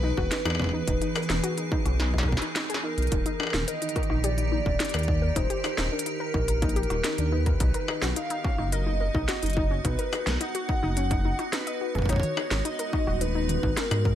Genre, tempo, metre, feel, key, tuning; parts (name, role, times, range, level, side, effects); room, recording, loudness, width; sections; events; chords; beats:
IDM; 107 BPM; 4/4; straight; A4 = 440 Hz
warbly nostalgic lead; melody; 0.0-14.2 s; Bb4 to F#5; -32 LUFS; equal; chorus, tremolo, digital delay
icy glass pad; sustained chords; 0.0-14.2 s; Eb3 to Bb4; -34 LUFS; right 1 dB; chorus, built-in reverb, vintage 12-bit sampler grit
warbly dusty pluck; arpeggios; 0.0-14.2 s; Eb3 to D#5; -33 LUFS; left 3 dB; chorus, cassette tape, digital delay
dark detuned saw bass; bass; 0.0-14.2 s; Eb1 to Ab2; -27 LUFS; equal
electronic kick drum; drums; 0.2-14.2 s; -28 LUFS; equal; distortion
industrial drum kit; drums; 0.3-14.0 s; hi-hat, rim click, shaker, snare drum, struck metal; -31 LUFS; left 1 dB
little or no reverb; -24 LUFS; side -11 dB against mid
0.0-14.2 A section
drum fill 2.0-3.1
0.0 Emaj7; 3.1 Eb; 7.6 B; 12.1 Abm7
0.32 | 0.88 1.44 2.00 2.56 | 3.12 3.68 4.24 4.80 | 5.36 5.92 6.48 7.04 | 7.61 8.16 8.73 9.29 | 9.85 10.41 10.97 11.53 | 12.09 12.65 13.21 13.77